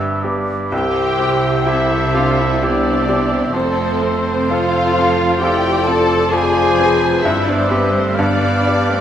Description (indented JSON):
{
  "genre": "classical",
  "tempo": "59-68 BPM",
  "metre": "3/4",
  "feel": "rubato",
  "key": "C major",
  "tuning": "A4 = 440 Hz",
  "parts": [
    { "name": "bright grand piano", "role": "melody", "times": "0.0-9.0 s", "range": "C2 to A4", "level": "-20 LUFS", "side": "left 1 dB", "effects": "none" },
    { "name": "dark cor anglais", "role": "second line", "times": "0.0-9.0 s", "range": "C5 to F5", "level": "-22 LUFS", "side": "right 2 dB", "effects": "none" },
    { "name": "warm clarinet", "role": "second line", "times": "0.0-9.0 s", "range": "A4 to C5", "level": "-26 LUFS", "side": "equal", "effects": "none" },
    { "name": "warm studio violin section", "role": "second line", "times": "0.0-9.0 s", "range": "G4 to D5", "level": "-26 LUFS", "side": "left 2 dB", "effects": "none" },
    { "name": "rich studio cello section", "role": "bass", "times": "0.0-9.0 s", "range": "F2 to C3", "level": "-25 LUFS", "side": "right 3 dB", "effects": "none" },
    { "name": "warm studio double bass section", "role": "bass", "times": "0.0-9.0 s", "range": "F1 to C2", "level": "-26 LUFS", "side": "right 3 dB", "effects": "none" },
    { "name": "warm studio violin section", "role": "melody", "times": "0.7-9.0 s", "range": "B4 to A5", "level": "-25 LUFS", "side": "left 4 dB", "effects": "none" },
    { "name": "mellow hollow silver concert flute", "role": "second line", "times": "0.7-9.0 s", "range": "B4 to A5", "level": "-25 LUFS", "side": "left 2 dB", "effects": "none" },
    { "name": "dark studio viola section", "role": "accompaniment", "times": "0.7-9.0 s", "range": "B3 to A4", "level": "-20 LUFS", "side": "equal", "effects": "none" },
    { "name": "mellow French horn section", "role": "sustained chords", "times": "0.7-9.0 s", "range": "G3 to F4", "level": "-23 LUFS", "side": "left 2 dB", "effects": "none" }
  ],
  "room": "wet scoring stage reverb, RT60 1.6 s",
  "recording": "none",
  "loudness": "-13 LUFS",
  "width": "side -10 dB against mid",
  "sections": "0.0-9.0 A section",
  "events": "none",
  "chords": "0.0 G; 0.7 C; 3.5 F; 6.3 Dm7b5/F; 7.2 C/G; 8.2 G7"
}